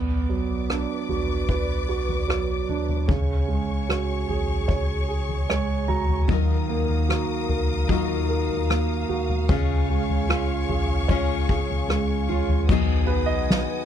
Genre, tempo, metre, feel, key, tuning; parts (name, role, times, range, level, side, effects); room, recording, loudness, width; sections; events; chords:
pop ballad; 75 BPM; 4/4; straight; A4 = 440 Hz
warm concert grand piano; accompaniment; 0.0-13.8 s; C#3 to A#5; -27 LUFS; right 8 dB
warm symphonic string section; sustained chords; 0.0-13.8 s; F#4 to D#6; -32 LUFS; left 3 dB
sub bass with octave; bass; 0.0-13.7 s; A#1 to D#2; -28 LUFS; left 1 dB
soft-mallet drum kit; drums; 0.7-13.7 s; crash cymbal, kick drum, rim click, snare drum, toms; -25 LUFS; left 1 dB
fingerpicked steel-string acoustic guitar; arpeggios; 6.3-13.8 s; C#3 to A#4; -28 LUFS; left 16 dB
light reverb; -21 LUFS; side -9 dB against mid
0.0-12.7 A section; 12.7-13.8 B section
grand piano fill 5.1-6.3; grand piano solo 12.7-13.8
0.0 Bm; 3.1 C#sus4; 6.3 D#madd9; 9.5 C#; 12.7 B6